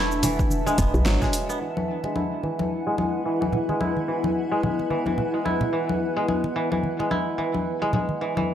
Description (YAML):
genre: organic downtempo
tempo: 109 BPM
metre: 4/4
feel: swing 58% on 16ths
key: E mixolydian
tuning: A4 = 439 Hz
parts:
  - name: granular cloud pad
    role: sustained chords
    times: 0.0-8.5 s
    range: D4 to A5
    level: -28 LUFS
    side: left 1 dB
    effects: built-in reverb, sidechain pumping
  - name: kora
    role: arpeggios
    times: 0.0-8.5 s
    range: E3 to E4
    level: -27 LUFS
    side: right 2 dB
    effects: low-pass filter, tape echo
  - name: woody FM bass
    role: bass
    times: 0.0-1.2 s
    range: E1 to B1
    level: -24 LUFS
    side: equal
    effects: tube saturation
  - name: deep house drum kit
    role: drums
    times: 0.1-8.5 s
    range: congas, hi-hat, shaker, snare drum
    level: -29 LUFS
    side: left 3 dB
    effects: overdrive, studio reverb
  - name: congas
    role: percussion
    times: 0.2-8.5 s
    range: none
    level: -30 LUFS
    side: right 1 dB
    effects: none
  - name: electronic kick drum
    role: drums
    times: 0.4-1.3 s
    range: none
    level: -26 LUFS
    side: equal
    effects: overdrive, studio reverb
room: light reverb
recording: dry, gritty hardware recording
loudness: -22 LUFS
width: side -10 dB against mid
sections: 0.0-1.6 A section; 1.6-8.5 B section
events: band accent 1.1; filter sweep on kora 1.6-8.5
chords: 0.0 D/E; 1.6 E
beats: 0.51 1.06 | 1.61 2.16 2.71 3.26 | 3.81 4.36 4.91 5.46 | 6.01 6.56 7.11 7.66 | 8.21